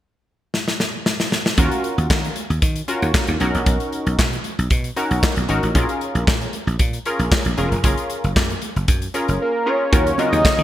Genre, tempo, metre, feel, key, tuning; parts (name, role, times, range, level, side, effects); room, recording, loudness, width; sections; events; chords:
early-eighties boogie funk; 115 BPM; 4/4; straight; Eb minor; A4 = 440 Hz
modern studio drum kit; drums; 0.5-10.6 s; handclaps, hi-hat, kick drum, snare drum; -20 LUFS; equal; gated reverb
funky polysynth comp; accompaniment; 1.6-10.6 s; Db4 to Bb4; -24 LUFS; equal; chorus
dry thumbed slap bass; bass; 1.6-10.6 s; Fb1 to Eb3; -21 LUFS; equal
fat analog lead; melody; 9.4-10.6 s; Bb4 to Eb5; -18 LUFS; equal; digital delay
chorused pulse-width pad; sustained chords; 9.9-10.6 s; Db3 to Eb4; -29 LUFS; equal
congas; percussion; 9.9-10.6 s; -28 LUFS; right 8 dB
light reverb, studio ambience; bright 1980s-style digital production; -17 LUFS; side -13 dB against mid
0.0-1.6 A section; 1.6-9.9 B section
drum fill 0.5-1.6
0.0 N.C.; 1.6 Ebm7; 3.4 Bmaj7; 5.8 Bbm7; 7.8 Gbmaj7; 9.9 Ebm7